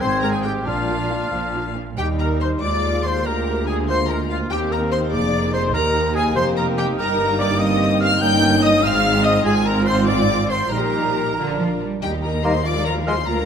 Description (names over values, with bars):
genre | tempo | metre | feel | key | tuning
quick classical-period movement for symphony orchestra | 96 BPM (dotted quarters) | 6/8 | rubato | Eb major | A4 = 440 Hz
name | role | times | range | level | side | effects
rich chamber violin section | melody | 0.0-13.5 s | F5 to G6 | -25 LUFS | left 2 dB | none
mellow small flute group | second line | 0.0-13.5 s | F4 to Ab6 | -27 LUFS | left 1 dB | none
warm oboe | second line | 0.0-13.1 s | F4 to Bb5 | -27 LUFS | right 1 dB | none
warm studio violin section | second line | 0.0-13.5 s | F4 to G5 | -27 LUFS | left 2 dB | none
clear bassoon | accompaniment | 0.0-1.8, 12.4-13.1 s | Ab3 to D4 | -28 LUFS | right 1 dB | none
rich studio viola section | accompaniment | 0.0-13.5 s | F3 to G4 | -26 LUFS | equal | none
dark French horn section | sustained chords | 0.0-13.1 s | F3 to Ab4 | -26 LUFS | left 3 dB | none
rich studio cello section | bass | 0.0-13.5 s | D2 to G3 | -25 LUFS | right 2 dB | none
rich studio double bass section | bass | 0.0-13.5 s | F1 to Eb2 | -26 LUFS | right 3 dB | none
room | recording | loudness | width
moderate concert hall reverb, RT60 1.9 s | none | -17 LUFS | side -7 dB against mid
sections
0.0-2.0 A section; 2.0-12.0 B section; 12.0-13.5 B section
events
none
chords
0.0 Ab; 0.7 Bb; 2.0 Eb; 2.6 Fm7/Eb; 3.2 Bb7/D; 4.5 Eb; 5.1 Bb7/F; 5.7 Eb; 7.0 Eb/G; 8.2 Eb7/G; 8.8 Ab; 9.5 Fm/Ab; 10.7 Eb/Bb; 11.4 Bb; 12.0 Eb; 12.7 Fm7/Eb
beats
0.01 | 0.66 1.32 | 1.98 2.62 | 3.25 3.88 | 4.50 5.13 | 5.75 6.36 | 6.99 7.61 | 8.22 8.84 | 9.46 10.08 | 10.72 11.38 | 12.03 12.66 | 13.28